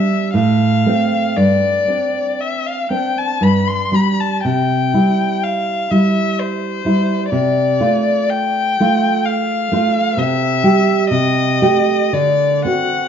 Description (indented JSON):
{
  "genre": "romantic duo for violin and classical guitar",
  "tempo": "55-66 BPM",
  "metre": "3/4",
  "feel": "rubato",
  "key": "unclear",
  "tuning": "A4 = 436 Hz",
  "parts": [
    { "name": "rich violin", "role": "melody", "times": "0.0-13.1 s", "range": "C5 to C6", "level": "-18 LUFS", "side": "left 4 dB", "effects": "none" },
    { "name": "nylon-string guitar", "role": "accompaniment", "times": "0.0-13.1 s", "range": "G2 to G4", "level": "-16 LUFS", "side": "right 2 dB", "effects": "none" }
  ],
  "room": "moderate recital hall reverb, RT60 1.4 s",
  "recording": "dark, warm production, nothing above 7.8 kHz",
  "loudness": "-14 LUFS",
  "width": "side -8 dB against mid",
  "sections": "0.0-13.1 A section",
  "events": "none",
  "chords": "0.4 F/A; 1.4 Gsus4; 3.4 G5; 4.4 C; 7.3 Dm7/C; 10.2 C; 11.1 Am7b5/C; 12.1 D7"
}